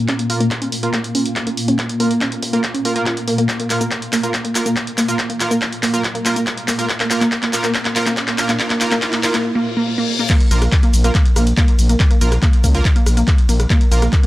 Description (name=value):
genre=driving peak-time techno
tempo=141 BPM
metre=4/4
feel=straight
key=unclear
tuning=A4 = 440 Hz
part: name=swarming drone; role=drone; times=0.0-9.4 s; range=Bb2 to Bb3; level=-24 LUFS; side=equal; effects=built-in reverb, sidechain pumping
part: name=resonant blip pluck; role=riff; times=0.1-14.3 s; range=Bb3 to F4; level=-21 LUFS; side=equal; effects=chorus, overdrive, sidechain pumping, tape echo
part: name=electronic kick drum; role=drums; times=0.1-14.2 s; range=none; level=-16 LUFS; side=equal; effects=high-pass filter on kick, high-pass filter on room
part: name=punchy analog drum machine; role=drums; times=0.1-14.3 s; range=crash cymbal, handclaps, hi-hat, ride cymbal, rim click, shaker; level=-21 LUFS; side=equal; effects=none
part: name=sync-sweep polysynth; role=stabs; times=0.3-14.0 s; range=Bb3 to Bb4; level=-24 LUFS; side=right 2 dB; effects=chorus, sidechain pumping, tape echo
part: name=riser and reverse cymbal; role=sound effects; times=5.4-10.3 s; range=none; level=-27 LUFS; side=left 2 dB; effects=none
part: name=growling FM bass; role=bass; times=10.5-14.1 s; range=Bb1 to Db2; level=-15 LUFS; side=equal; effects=sidechain pumping
room=little or no reverb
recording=dry, gritty hardware recording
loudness=-14 LUFS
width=side -16 dB against mid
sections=0.0-10.3 A section; 10.3-14.3 B section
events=build-up 0.0-10.3; drum fill 0.0-9.4; filter sweep on synth arpeggio sound 0.0-10.3; filter sweep on analog polysynth 0.0-10.3; reverse cymbal 9.4-10.3; drop 10.3-14.3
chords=0.0 Bb5